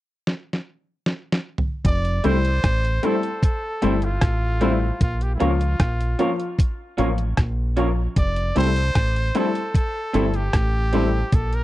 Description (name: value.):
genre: lovers rock reggae.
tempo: 76 BPM.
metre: 4/4.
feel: straight.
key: F major.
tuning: A4 = 441 Hz.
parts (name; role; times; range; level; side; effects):
detuned 8-bit digital drum machine; drums; 0.3-11.6 s; hi-hat, kick drum, rim click, snare drum, toms; -21 LUFS; equal; none.
bright trumpet; melody; 1.9-11.6 s; E4 to D5; -27 LUFS; equal; tape echo.
deep dub fingered electric bass; bass; 1.9-11.6 s; F1 to Db2; -22 LUFS; equal; none.
warm baby grand piano; accompaniment; 2.2-11.1 s; F3 to F4; -23 LUFS; left 4 dB; slapback echo.
electric guitar through a small old amp; stabs; 2.2-11.0 s; A3 to Db5; -26 LUFS; right 5 dB; spring reverb.
room: little or no reverb.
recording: dry, close 1970s-style studio recording.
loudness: -19 LUFS.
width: side -16 dB against mid.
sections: 0.0-1.8 A section; 1.8-11.6 B section.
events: drum fill 0.3-1.8.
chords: 0.0 N.C.; 1.8 Fmaj7; 5.0 Bbm; 8.2 Fmaj7 (rootless).